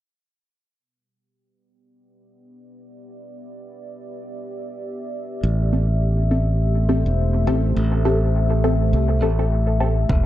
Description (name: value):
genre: ambient dub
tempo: 103 BPM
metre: 4/4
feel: swing 58% on 16ths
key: A minor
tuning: A4 = 440 Hz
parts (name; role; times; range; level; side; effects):
- deep dark ambient pad; sustained chords; 2.6-10.3 s; A3 to E5; -28 LUFS; left 2 dB; chorus, built-in reverb
- modern bright fingered electric bass; bass; 5.4-10.3 s; E1 to C2; -18 LUFS; equal; none
- filtered dub chord stab; stabs; 5.7-9.9 s; C4 to A4; -25 LUFS; left 1 dB; phaser, dub echo
- electronic kick drum; drums; 10.1-10.2 s; none; -18 LUFS; equal; none
room: moderate recital hall reverb, RT60 1.9 s, digital ambience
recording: none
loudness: -17 LUFS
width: side -13 dB against mid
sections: 0.8-10.1 A section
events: fade-in on ambient pad 0.8-10.1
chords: 0.8 Em7; 5.4 Am7